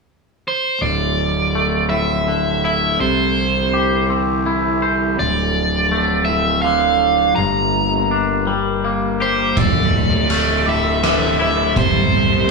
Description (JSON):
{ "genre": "post-rock", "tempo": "82 BPM", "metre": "3/4", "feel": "straight", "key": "D minor", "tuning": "A4 = 441 Hz", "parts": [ { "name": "overdriven electric guitar", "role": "melody", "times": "0.5-12.5 s", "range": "C5 to Bb5", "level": "-18 LUFS", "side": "right 2 dB", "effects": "none" }, { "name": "sweeping resonant pad", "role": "sustained chords", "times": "0.8-12.5 s", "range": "D3 to Bb4", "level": "-26 LUFS", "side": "equal", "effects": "chorus" }, { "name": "twangy electric guitar", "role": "arpeggios", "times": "0.8-12.5 s", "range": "D2 to C5", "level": "-21 LUFS", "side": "left 3 dB", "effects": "none" }, { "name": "fuzz fingered electric bass", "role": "bass", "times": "0.8-12.5 s", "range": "D1 to C2", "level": "-21 LUFS", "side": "right 1 dB", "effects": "overdrive" }, { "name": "twelve-string electric guitar", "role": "arpeggios", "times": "9.6-12.5 s", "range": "C5 to F5", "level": "-28 LUFS", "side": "right 4 dB", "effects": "none" }, { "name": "oversized low-tuned drum kit", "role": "drums", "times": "9.6-11.9 s", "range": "kick drum, ride cymbal, rim click", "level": "-18 LUFS", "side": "right 1 dB", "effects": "none" } ], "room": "wet large studio reverb, RT60 1.2 s", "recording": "band playing live in one room, small room ambience", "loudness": "-15 LUFS", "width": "side -3 dB against mid", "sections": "0.8-12.5 A section", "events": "none", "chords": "0.0 N.C.; 0.8 Dmadd9; 3.0 Cadd9; 5.2 Dmadd9; 7.4 Gm; 9.6 Dmadd9; 11.8 Cadd9", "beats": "0.09 | 0.82 1.55 2.28 | 3.00 3.73 4.46 | 5.20 5.92 6.65 | 7.38 8.11 8.84 | 9.57 10.30 11.04 | 11.77 12.49" }